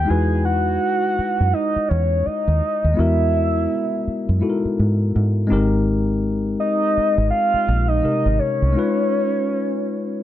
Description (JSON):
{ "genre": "R&B", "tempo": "83 BPM", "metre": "4/4", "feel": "swing 59% on 16ths", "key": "unclear", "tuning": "A4 = 440 Hz", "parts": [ { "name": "soft octave-layered synth lead", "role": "melody", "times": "0.0-10.2 s", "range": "Db5 to G#5", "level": "-21 LUFS", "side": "right 1 dB", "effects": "chorus, phaser" }, { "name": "tine electric piano", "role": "accompaniment", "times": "0.0-10.2 s", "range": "C3 to B4", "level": "-22 LUFS", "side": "left 3 dB", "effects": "overdrive" }, { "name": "deep dub fingered electric bass", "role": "bass", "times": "0.0-8.7 s", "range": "Ab1 to G#2", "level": "-19 LUFS", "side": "equal", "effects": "none" } ], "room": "moderate studio reverb, RT60 0.5 s", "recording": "dark, warm production", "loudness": "-17 LUFS", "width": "side -12 dB against mid", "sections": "0.0-10.2 A section", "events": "break 8.7-10.2", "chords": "0.1 Emaj9; 5.5 Abmaj9; 8.7 Db9" }